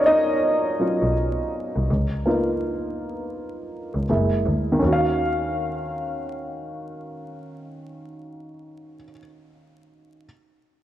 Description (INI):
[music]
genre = hip hop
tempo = 82 BPM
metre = 4/4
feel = swing 58% on 16ths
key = Eb minor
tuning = A4 = 439 Hz
[part]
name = dark upright piano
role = accompaniment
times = 0.0-10.3 s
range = Eb3 to F5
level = -23 LUFS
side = equal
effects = cassette tape
[part]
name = rich double bass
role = bass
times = 0.0-8.5 s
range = Gb1 to Eb2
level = -25 LUFS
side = equal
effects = none
[sound]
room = wet plate reverb, RT60 3.0 s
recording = dreamy mix soaked in reverb, vinyl crackle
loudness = -21 LUFS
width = side -12 dB against mid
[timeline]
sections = 0.0-4.8 A section; 4.8-7.7 B section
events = upright piano solo 0.0-4.8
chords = 0.0 Ebm9; 1.9 Db13; 4.1 Gb7; 4.8 Ebm9